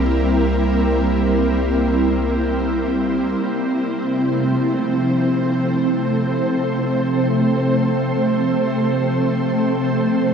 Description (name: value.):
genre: ambient.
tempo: free time.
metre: none.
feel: none.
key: unclear.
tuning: A4 = 441 Hz.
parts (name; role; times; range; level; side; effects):
ethereal airy pad; sustained chords; 0.0-10.3 s; C3 to C5; -17 LUFS; right 1 dB; ensemble chorus, built-in reverb.
warm sub bass; bass; 0.0-3.3 s; C2; -23 LUFS; left 1 dB; none.
room: wet cathedral reverb, RT60 4.9 s.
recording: in a vast, echoing space.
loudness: -16 LUFS.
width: side -6 dB against mid.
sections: 0.0-3.4 A section; 3.4-10.3 B section.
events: none.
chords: 0.0 C7; 3.4 F/C.